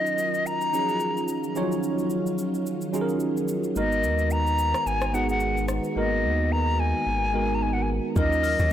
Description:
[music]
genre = amapiano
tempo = 109 BPM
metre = 4/4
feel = swing 58% on 16ths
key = Eb minor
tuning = A4 = 440 Hz
[part]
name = silver concert flute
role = melody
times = 0.0-8.7 s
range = Eb5 to Bb5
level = -26 LUFS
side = left 2 dB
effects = digital delay
[part]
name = tine electric piano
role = accompaniment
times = 0.0-8.7 s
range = F3 to Db5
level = -27 LUFS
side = right 3 dB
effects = analog chorus
[part]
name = ensemble organ-string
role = sustained chords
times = 0.0-8.7 s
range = Eb3 to Gb4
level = -34 LUFS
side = left 3 dB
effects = ensemble chorus, sidechain pumping
[part]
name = deep house drum kit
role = drums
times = 0.1-8.7 s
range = hi-hat, kick drum, rim click, shaker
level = -34 LUFS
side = left 1 dB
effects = none
[part]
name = warm sub bass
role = bass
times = 3.8-8.0 s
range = Ab1 to Eb2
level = -27 LUFS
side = equal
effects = none
[part]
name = deep log drum bass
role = bass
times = 8.2-8.7 s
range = Eb2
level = -24 LUFS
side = equal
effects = none
[part]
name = agogo bells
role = percussion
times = 8.2-8.6 s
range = none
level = -36 LUFS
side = left 12 dB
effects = none
[sound]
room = light reverb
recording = blown-out, overdriven recording, overdrive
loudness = -22 LUFS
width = side -10 dB against mid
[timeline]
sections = 0.0-8.2 A section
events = silent gap 6.0-8.2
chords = 0.0 Ebm9; 3.8 Abm7; 8.2 Ebm9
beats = 0.46 1.01 | 1.56 2.11 2.66 3.21 | 3.76 4.31 4.86 5.41 | 5.96 6.51 7.06 7.61 | 8.16 8.71

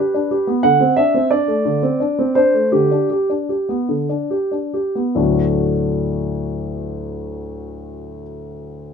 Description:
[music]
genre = classical-period piano sonatina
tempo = 45-62 BPM (dotted quarters)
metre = 6/8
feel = rubato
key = D major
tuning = A4 = 438 Hz
[part]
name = warm concert grand piano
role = solo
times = 0.0-8.9 s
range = D2 to F#5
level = -16 LUFS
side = equal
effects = none
[sound]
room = light reverb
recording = close, detailed microphones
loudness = -15 LUFS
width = side -6 dB against mid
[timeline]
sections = 0.0-5.2 A section; 5.2-8.9 B section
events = slowing down 0.0-5.2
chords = 0.0 G/D; 0.6 D5; 2.7 G/D; 5.2 D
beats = | 0.63 1.65 | 2.72 3.88 | 5.16 6.41 | 7.67 8.93

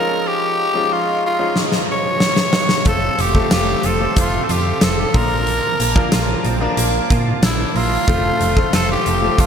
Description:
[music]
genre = 1980s-style pop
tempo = 92 BPM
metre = 4/4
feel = straight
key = F major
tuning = A4 = 441 Hz
[part]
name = growling tenor saxophone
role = melody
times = 0.0-9.5 s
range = E4 to Db5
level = -20 LUFS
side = equal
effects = ping-pong delay
[part]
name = clear concert grand piano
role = accompaniment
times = 0.0-9.5 s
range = F3 to Bb4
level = -23 LUFS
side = left 3 dB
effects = none
[part]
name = phased analog pad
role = sustained chords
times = 0.0-9.5 s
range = F3 to D6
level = -28 LUFS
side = equal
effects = phaser, chorus
[part]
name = huge arena drum kit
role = drums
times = 1.6-9.5 s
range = hi-hat, kick drum, snare drum, tambourine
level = -18 LUFS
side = equal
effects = gated reverb
[part]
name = direct-recorded clean electric guitar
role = riff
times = 2.9-9.5 s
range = F3 to F4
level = -27 LUFS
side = right 5 dB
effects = ensemble chorus, ping-pong delay
[part]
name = slap-like FM bass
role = bass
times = 2.9-9.5 s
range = F1 to Bb2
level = -21 LUFS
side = right 1 dB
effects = none
[sound]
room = wet lush hall reverb, RT60 2.9 s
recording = bright 1980s-style digital production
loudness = -14 LUFS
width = side -7 dB against mid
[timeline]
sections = 0.0-9.5 A section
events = drum fill 1.6-2.9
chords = 0.0 Dbadd9/F; 2.9 F; 5.1 Bb; 8.1 F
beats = | 0.25 0.90 1.55 2.21 | 2.86 3.51 4.16 4.82 | 5.47 6.12 6.77 7.42 | 8.08 8.73 9.38

